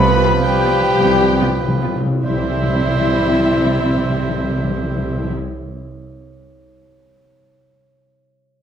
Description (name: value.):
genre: classical, orchestral ballroom waltz.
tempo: 138-174 BPM.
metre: 3/4.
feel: rubato.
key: C major.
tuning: A4 = 441 Hz.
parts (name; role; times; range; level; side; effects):
muted symphonic violin section; melody; 0.0-5.3 s; E5 to B5; -25 LUFS; left 3 dB; none.
mellow clarinet; second line; 0.0-5.3 s; E4 to B4; -24 LUFS; left 3 dB; none.
muted studio violin section; second line; 0.0-5.3 s; E4 to B4; -27 LUFS; left 2 dB; none.
silver concert flute; second line; 0.0-5.3 s; E5 to B5; -28 LUFS; left 4 dB; none.
warm cor anglais; second line; 0.0-5.3 s; B4 to C5; -24 LUFS; right 6 dB; none.
clear bassoon; accompaniment; 0.0-5.3 s; F3 to G3; -26 LUFS; right 2 dB; none.
mellow French horn section; sustained chords; 0.0-5.3 s; G3 to E4; -24 LUFS; left 3 dB; none.
concert harp; arpeggios; 0.0-6.1 s; C3 to B5; -28 LUFS; left 6 dB; none.
muted symphonic cello section; bass; 0.0-5.3 s; C3; -24 LUFS; right 2 dB; none.
muted symphonic double bass section; bass; 0.0-5.3 s; C2; -23 LUFS; right 4 dB; none.
timpani; percussion; 0.0-5.4 s; C3; -22 LUFS; equal; none.
muted studio viola section; accompaniment; 0.2-5.3 s; B3 to F4; -26 LUFS; right 2 dB; none.
room: moderate scoring stage reverb, RT60 1.5 s.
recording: none.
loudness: -14 LUFS.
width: side -8 dB against mid.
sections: 0.0-2.2 A section; 2.2-4.6 B section.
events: timpani fill 0.0-2.2; slowing down 0.0-2.2.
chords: 0.0 G7/C; 2.2 C.